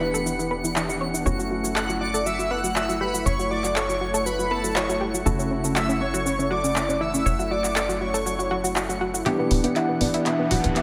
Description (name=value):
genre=progressive house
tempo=120 BPM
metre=4/4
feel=straight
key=unclear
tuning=A4 = 440 Hz
part: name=warm velvety synth lead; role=melody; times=0.0-10.8 s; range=A4 to F#5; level=-31 LUFS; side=equal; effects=chorus, dub echo
part: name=soft supersaw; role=second line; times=0.0-9.0 s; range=A5 to F#6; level=-34 LUFS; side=equal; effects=digital delay
part: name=supersaw pad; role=sustained chords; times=0.0-10.8 s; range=E3 to F#5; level=-33 LUFS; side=equal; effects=none
part: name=analog pluck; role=arpeggios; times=0.0-10.8 s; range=B3 to C#5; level=-30 LUFS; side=equal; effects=chorus, digital delay
part: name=dark concert grand piano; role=stabs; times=0.0-10.8 s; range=C#3 to G4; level=-32 LUFS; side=equal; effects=digital delay
part: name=tight sequencer bass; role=bass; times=0.0-10.8 s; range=E1 to F#1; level=-33 LUFS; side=equal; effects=none
part: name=twinkling granular texture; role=texture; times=0.0-9.3 s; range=C#7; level=-40 LUFS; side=equal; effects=built-in reverb
part: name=deep house drum kit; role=drums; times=0.1-10.8 s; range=handclaps, hi-hat, shaker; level=-31 LUFS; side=equal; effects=overdrive
part: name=riser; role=sound effects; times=10.1-10.8 s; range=none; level=-43 LUFS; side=equal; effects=none
room=moderate lush hall reverb, RT60 1.7 s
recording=none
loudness=-24 LUFS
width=mono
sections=0.0-9.3 A section; 9.3-10.8 B section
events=build-up 9.3-10.8; drum fill 9.3-10.8; filter sweep on soft synth lead 9.3-10.8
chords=0.0 Em7; 1.3 F#m7; 9.3 Em7